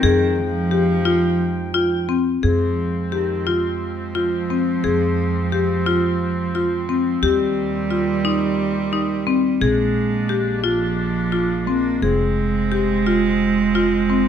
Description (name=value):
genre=contemporary instrumental, chamber music in an uneven meter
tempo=175 BPM (eighths)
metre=7/8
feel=straight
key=F dorian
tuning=A4 = 440 Hz
part: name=warm cello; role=second line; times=0.0-14.3 s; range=Eb3 to Bb3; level=-22 LUFS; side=right 4 dB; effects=none
part: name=warm woodwind section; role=sustained chords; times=0.0-14.3 s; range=Eb3 to G5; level=-29 LUFS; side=left 1 dB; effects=none
part: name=marimba with hard mallets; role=arpeggios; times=0.0-14.3 s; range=C4 to Ab4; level=-20 LUFS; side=left 3 dB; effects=none
part: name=upright bass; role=bass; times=0.0-14.3 s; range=F1 to F2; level=-25 LUFS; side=right 1 dB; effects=none
room=moderate recital hall reverb, RT60 1.6 s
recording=minimal, uncompressed stereo recording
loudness=-17 LUFS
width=side -8 dB against mid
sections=0.0-2.4 A section; 2.4-14.3 B section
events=none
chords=0.0 Fm9; 2.4 Fm; 7.2 Eb6; 9.6 Bb7; 12.0 Fm